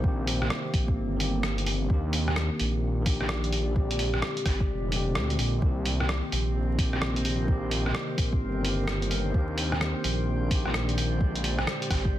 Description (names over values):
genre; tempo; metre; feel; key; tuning
future garage; 129 BPM; 4/4; swing 63% on 16ths; C minor; A4 = 440 Hz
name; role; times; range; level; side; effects
bell-like tine electric piano; accompaniment; 0.0-12.2 s; D3 to G4; -33 LUFS; left 1 dB; sidechain pumping, dub echo
warbly tape-like pad; sustained chords; 0.0-12.2 s; Bb2 to Eb5; -35 LUFS; equal; chorus, built-in reverb, phaser, sidechain pumping
swelling detuned saw bass; bass; 0.0-12.2 s; F1 to Eb2; -29 LUFS; equal; sidechain pumping
electronic kick drum; drums; 0.0-12.1 s; none; -26 LUFS; equal; none
lo-fi sampler-style drum kit; drums; 0.3-12.0 s; hi-hat, rim click; -30 LUFS; equal; soft clipping on snare
drifting glass-harmonics texture; texture; 6.3-12.2 s; C4 to C5; -39 LUFS; right 2 dB; chorus, built-in reverb
room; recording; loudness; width
light reverb, digital ambience; dense, heavily limited modern master, vinyl crackle; -25 LUFS; side -13 dB against mid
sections
0.0-12.2 A section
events
none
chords
0.0 Cm7; 1.9 Ebmaj7; 3.8 Bb13; 5.6 Cm7; 9.3 Ebmaj7; 11.2 Bb13